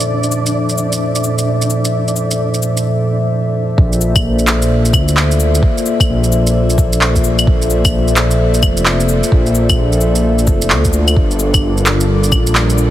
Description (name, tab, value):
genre	future garage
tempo	130 BPM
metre	4/4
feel	swing 63% on 16ths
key	unclear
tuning	A4 = 438 Hz
part	dark analog pad	sustained chords	0.0-12.9 s	Bb2 to E5	-16 LUFS	equal	chorus, vintage 12-bit sampler grit, sidechain pumping
part	electronic shaker, cabasa, claves and handclaps	drums	0.0-12.9 s	none	-18 LUFS	equal	overdrive, studio reverb
part	flickering grainy texture	texture	0.0-2.9, 11.5-12.9 s	D4 to D5	-22 LUFS	left 1 dB	built-in reverb
part	dark detuned saw bass	bass	3.8-12.9 s	F1 to D2	-14 LUFS	equal	tube saturation, sidechain pumping
part	electronic kick drum	drums	3.8-12.4 s	none	-14 LUFS	equal	overdrive, studio reverb
room	light reverb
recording	heavily compressed radio sound, multiband compression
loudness	-11 LUFS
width	side -13 dB against mid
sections	0.0-3.8 A section; 3.8-12.9 B section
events	none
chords	0.0 Bbmaj9#11; 11.2 Gm9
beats	| 0.09 0.55 1.01 1.47 | 1.94 2.40 2.86 3.32 | 3.78 4.24 4.71 5.17 | 5.63 6.09 6.55 7.01 | 7.47 7.94 8.40 8.86 | 9.32 9.78 10.24 10.71 | 11.17 11.63 12.09 12.55